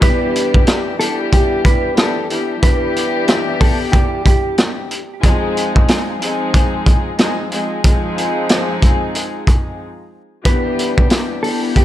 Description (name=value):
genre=hip hop, boom-bap hip-hop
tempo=92 BPM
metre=4/4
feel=swing 62% on 16ths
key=unclear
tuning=A4 = 440 Hz
part: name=mellow electric guitar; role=melody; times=0.0-4.5, 10.5-11.8 s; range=G4 to B4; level=-21 LUFS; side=right 1 dB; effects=spring reverb, high-pass filter, low-pass filter, ping-pong delay
part: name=warm chamber string section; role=accompaniment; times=0.0-11.8 s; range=E3 to Ab4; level=-20 LUFS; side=left 2 dB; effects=high-pass filter, low-pass filter
part: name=crunchy breakbeat drum kit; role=drums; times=0.0-11.8 s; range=hi-hat, kick drum, rim click, snare drum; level=-14 LUFS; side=equal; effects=none
room=light reverb, studio ambience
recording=none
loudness=-13 LUFS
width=side -13 dB against mid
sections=0.0-10.5 A section; 10.5-11.8 B section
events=break 9.8-10.5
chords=0.0 Em7; 5.2 Fm7; 10.5 Em7